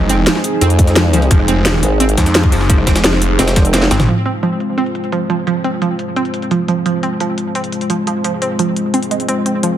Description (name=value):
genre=dark technical drum and bass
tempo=173 BPM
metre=4/4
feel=straight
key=F phrygian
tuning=A4 = 440 Hz
part: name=dark analog pad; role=sustained chords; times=0.0-9.8 s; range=Ab3 to C5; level=-19 LUFS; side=equal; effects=chorus, sidechain pumping
part: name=snarling distorted saw bass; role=bass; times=0.0-4.1 s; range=F1 to F2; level=-16 LUFS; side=equal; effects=distortion, overdrive, sidechain pumping
part: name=analog pluck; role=arpeggios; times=0.1-9.7 s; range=F3 to C4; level=-18 LUFS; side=right 3 dB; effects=chorus, sidechain pumping, dub echo
part: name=drum and bass drum kit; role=drums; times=0.1-9.7 s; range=hi-hat, rim click, snare drum, toms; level=-18 LUFS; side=equal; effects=low-pass filter on hats, low-pass filter on cymbals, low-pass filter on snare, low-pass filter on toms
part: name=jungle sampler-style drum kit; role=drums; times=0.1-4.1 s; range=hi-hat, snare drum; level=-23 LUFS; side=equal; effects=high-pass filter on hats, high-pass filter on snare
part: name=formant-sweep wobble bass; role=bass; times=0.6-3.9 s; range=F1 to F2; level=-14 LUFS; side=equal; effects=chorus
part: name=electronic kick drum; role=drums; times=0.8-3.6 s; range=none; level=-12 LUFS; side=equal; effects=none
room=light reverb, digital ambience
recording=dense, heavily limited modern master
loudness=-12 LUFS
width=side -11 dB against mid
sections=0.0-4.1 A section; 4.1-9.8 B section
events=drop 0.0-4.1; drum fill 3.7-4.1; filter sweep on drum 4.1-9.8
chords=0.0 Fm